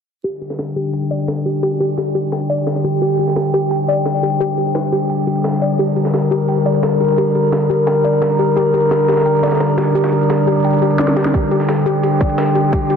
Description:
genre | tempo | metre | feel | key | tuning
dark technical drum and bass | 173 BPM | 4/4 | straight | G minor | A4 = 440 Hz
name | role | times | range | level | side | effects
metallic inharmonic drone | sustained chords | 0.4-13.0 s | D3 to Bb4 | -15 LUFS | left 1 dB | chorus, built-in reverb, sidechain pumping
warbly dusty pluck | arpeggios | 0.2-13.0 s | G4 to G5 | -20 LUFS | left 1 dB | chorus, sidechain pumping, digital delay
breakbeat sampler-style drum kit | drums | 0.2-13.0 s | hi-hat, ride cymbal, snare drum | -27 LUFS | right 1 dB | high-pass filter on cymbals, high-pass filter on snare, high-pass filter on hats
drum and bass drum kit | drums | 0.2-13.0 s | hi-hat, snare drum | -21 LUFS | right 2 dB | none
electronic kick drum | drums | 11.3-12.8 s | none | -17 LUFS | equal | overdrive
room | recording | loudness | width
wet lush hall reverb, RT60 1.8 s, digital ambience | dense, heavily limited modern master, low-pass filter | -14 LUFS | side -7 dB against mid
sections
0.2-13.0 A section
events
filter sweep on synth arpeggio sound 0.2-13.0; filter sweep 0.2-13.0; drum fill 11.0-11.3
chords
0.2 G5

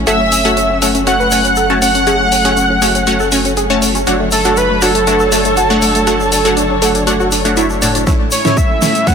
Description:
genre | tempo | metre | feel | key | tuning
progressive house | 120 BPM | 4/4 | straight | unclear | A4 = 439 Hz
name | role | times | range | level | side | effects
dark symphonic string section | sustained chords | 0.0-9.1 s | A2 to C#5 | -21 LUFS | equal | vintage 12-bit sampler grit, sidechain pumping, low-pass filter
wide unison pluck | stabs | 0.0-9.1 s | A2 to A5 | -17 LUFS | left 1 dB | phaser, sidechain pumping, digital delay
saturated sub bass | bass | 0.0-8.0 s | F#1 | -22 LUFS | equal | sidechain pumping
wide unison lead | melody | 0.1-9.1 s | A4 to F#5 | -16 LUFS | right 1 dB | ping-pong delay
dark studio violin section | second line | 0.1-7.6 s | A5 to F#6 | -21 LUFS | left 1 dB | sidechain pumping, digital delay
tight sequenced synth | arpeggios | 0.1-9.1 s | A3 to B4 | -18 LUFS | equal | chorus, sidechain pumping, digital delay
deep house drum kit | drums | 0.1-9.1 s | hi-hat, snare drum | -19 LUFS | equal | none
tube shaker | percussion | 0.1-9.1 s | none | -24 LUFS | left 3 dB | none
electronic kick drum | drums | 8.1-9.1 s | none | -14 LUFS | equal | none
riser | sound effects | 8.7-9.1 s | none | -32 LUFS | equal | none
room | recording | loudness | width
moderate lush hall reverb, RT60 2.5 s | none | -10 LUFS | side -6 dB against mid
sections
0.0-8.1 A section; 8.1-9.1 B section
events
filter sweep on string section 0.0-8.1; build-up 8.1-9.1; drum fill 8.1-9.1; filter sweep on synth pluck 8.1-9.1; filter sweep 8.1-9.1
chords
0.1 F#m; 4.1 Dmaj7/F#; 8.1 A

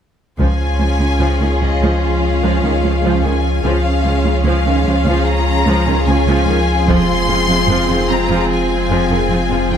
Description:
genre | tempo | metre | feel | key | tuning
cinematic, hybrid orchestral and electronic film score | 74 BPM | 4/4 | straight | unclear | A4 = 440 Hz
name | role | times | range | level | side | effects
rich symphonic violin section | melody | 0.4-9.8 s | Eb5 to C6 | -22 LUFS | left 4 dB | none
rich symphonic violin section | second line | 0.4-9.8 s | F4 to Ab4 | -23 LUFS | left 2 dB | none
rich symphonic viola section | accompaniment | 0.4-9.8 s | C3 to Db4 | -21 LUFS | right 3 dB | none
ethereal airy pad | sustained chords | 1.3-9.8 s | F3 to F5 | -22 LUFS | right 1 dB | ensemble chorus, built-in reverb
mellow French horn section | sustained chords | 0.4-9.8 s | Ab3 to F4 | -24 LUFS | left 1 dB | none
pure sine sub bass | bass | 0.4-9.8 s | F1 to Db2 | -18 LUFS | equal | none
rich symphonic cello section | bass | 0.4-9.8 s | Db2 to F2 | -21 LUFS | right 2 dB | none
taiko ensemble | drums | 0.4-2.0, 6.9-8.5 s | none | -21 LUFS | left 1 dB | none
room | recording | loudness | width
moderate scoring stage reverb, RT60 1.6 s | none | -13 LUFS | side -8 dB against mid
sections
0.4-9.8 A section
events
none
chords
0.4 Db; 6.9 Fm

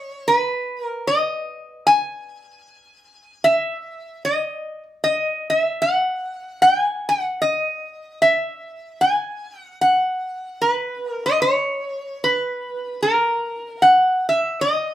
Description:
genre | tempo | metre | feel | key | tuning
hawaiian | 75 BPM | 4/4 | swing 59% on 8ths | B major | A4 = 440 Hz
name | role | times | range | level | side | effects
lap resonator guitar | solo | 0.0-14.9 s | A#4 to G#5 | -18 LUFS | equal | none
room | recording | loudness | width
wet small room reverb, RT60 0.5 s | band playing live in one room | -18 LUFS | side -13 dB against mid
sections
0.0-14.9 A section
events
none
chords
none

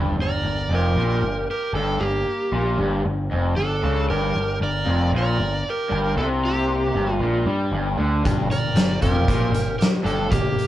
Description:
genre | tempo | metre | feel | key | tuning
blues rock power trio and southern rock | 116 BPM | 4/4 | straight | G minor | A4 = 440 Hz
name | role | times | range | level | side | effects
raw garage guitar | riff | 0.0-10.5 s | F2 to G3 | -25 LUFS | left 1 dB | overdrive, spring reverb
growling picked electric bass | bass | 0.0-10.6 s | F1 to G2 | -24 LUFS | equal | overdrive
overdriven slide guitar | melody | 0.2-10.7 s | G4 to D5 | -25 LUFS | right 1 dB | none
lightly driven lead guitar | second line | 0.2-10.7 s | Bb3 to Bb4 | -32 LUFS | right 4 dB | none
oversized low-tuned drum kit | drums | 8.3-10.7 s | hi-hat, kick drum, snare drum | -22 LUFS | equal | vintage 12-bit sampler grit
room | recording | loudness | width
moderate large studio reverb, RT60 1.0 s | band playing live in one room, cassette tape | -19 LUFS | side -13 dB against mid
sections
0.0-10.7 A section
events
none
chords
0.0 Gm

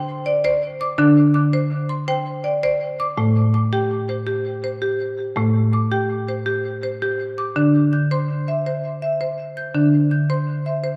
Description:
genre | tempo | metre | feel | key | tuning
world meditative | 82 BPM | 3/4 | straight | A minor pentatonic | A4 = 440 Hz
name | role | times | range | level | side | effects
marimba with hard mallets | solo | 0.0-11.0 s | A2 to G6 | -20 LUFS | equal | diffuse ambient delay
room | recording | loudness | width
wet concert hall reverb, RT60 1.8 s, studio reverb | dark, warm production | -20 LUFS | mono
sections
0.0-3.2 A section; 3.2-11.0 B section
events
none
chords
0.0 D5; 3.2 Am; 7.5 D9sus4

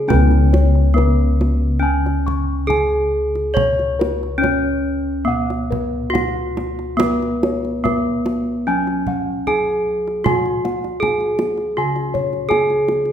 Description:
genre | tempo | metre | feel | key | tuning
Javanese gamelan | 71 BPM | 4/4 | uneven beats | unclear | A4 = 440 Hz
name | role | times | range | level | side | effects
gamelan-type bronze metallophone | melody | 0.0-13.1 s | Cb4-45c to Db5 | -20 LUFS | equal | none
gamelan-type bossed gongs | bass | 0.0-13.1 s | Db2 to Db5 | -20 LUFS | left 1 dB | none
gamelan-type bossed gongs | arpeggios | 0.1-12.9 s | Cb5-45c to Db6 | -25 LUFS | left 3 dB | none
kendang | percussion | 0.1-13.1 s | none | -25 LUFS | right 2 dB | none
room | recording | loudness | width
wet recital hall reverb, RT60 1.5 s | minimal, uncompressed stereo recording | -16 LUFS | side -9 dB against mid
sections
0.0-13.1 A section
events
none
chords
none

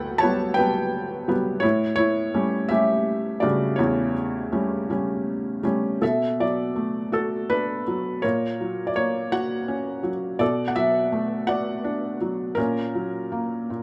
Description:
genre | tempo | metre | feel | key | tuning
classical, lyrical solo piano | 55 BPM (dotted quarters) | 6/8 | rubato | B minor from 6.0 s | A4 = 440 Hz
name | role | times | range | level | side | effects
felt-muted upright piano | solo | 0.0-13.8 s | D2 to A5 | -24 LUFS | equal | none
room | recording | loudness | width
light reverb | none | -24 LUFS | mono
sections
0.0-6.0 A section; 6.0-13.8 B section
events
none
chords
0.0 Gmaj7; 1.6 A7; 6.0 Bm7; 8.2 F#/A#; 10.4 Bm7; 12.6 F#/A#

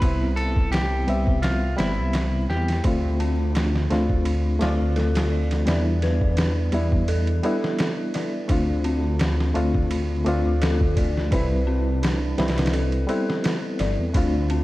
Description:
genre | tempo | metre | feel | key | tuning
trip hop | 85 BPM | 4/4 | swing 55% on 16ths | unclear | A4 = 441 Hz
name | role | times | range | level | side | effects
clean electric guitar | melody | 0.0-2.8 s | E4 to B4 | -30 LUFS | equal | tape echo
reed electric piano | accompaniment | 0.0-14.6 s | G3 to E5 | -26 LUFS | equal | harmonic tremolo, tape echo
dark detuned saw bass | bass | 0.0-14.6 s | G1 to E2 | -23 LUFS | equal | none
trip hop sampler-style drum kit | drums | 0.0-14.6 s | kick drum, ride cymbal, snare drum | -26 LUFS | equal | studio reverb
dark detuned synth bell | arpeggios | 2.9-14.6 s | C4 to D5 | -30 LUFS | left 2 dB | chorus, phaser, vintage 12-bit sampler grit, tape echo
room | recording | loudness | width
little or no reverb | vinyl crackle | -20 LUFS | side -17 dB against mid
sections
0.0-14.6 A section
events
none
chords
0.0 Cmaj7; 2.9 Dm7; 5.7 Em7; 8.5 Dm7; 11.3 Cmaj7

